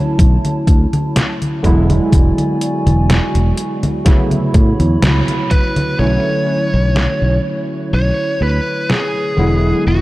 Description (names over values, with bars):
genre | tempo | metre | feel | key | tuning
vaporwave | 62 BPM | 4/4 | straight | B dorian | A4 = 439 Hz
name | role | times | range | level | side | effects
warbly lo-fi synth keys | accompaniment | 0.0-10.0 s | C#3 to E4 | -18 LUFS | right 1 dB | lush chorus, analog delay
warbly tape-like pad | sustained chords | 0.0-10.0 s | A3 to C#6 | -26 LUFS | right 1 dB | chorus, built-in reverb, vintage 12-bit sampler grit
fingered electric bass | bass | 0.2-10.0 s | E1 to A2 | -14 LUFS | equal | tube saturation
detuned 8-bit digital drum machine | drums | 0.2-9.1 s | congas, hi-hat, snare drum | -19 LUFS | equal | overdrive
electronic kick drum | drums | 0.2-5.7 s | none | -12 LUFS | equal | overdrive
biting lead guitar | melody | 5.5-10.0 s | F#4 to C#5 | -19 LUFS | equal | overdrive, tape echo
room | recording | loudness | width
light reverb, digital ambience | dark, warm production, cassette tape | -12 LUFS | side -18 dB against mid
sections
0.0-6.0 A section; 6.0-10.0 B section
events
band accent 5.0-5.5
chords
0.0 Bm11 (rootless); 1.6 E9; 4.1 A69; 6.0 Bm11; 9.4 E9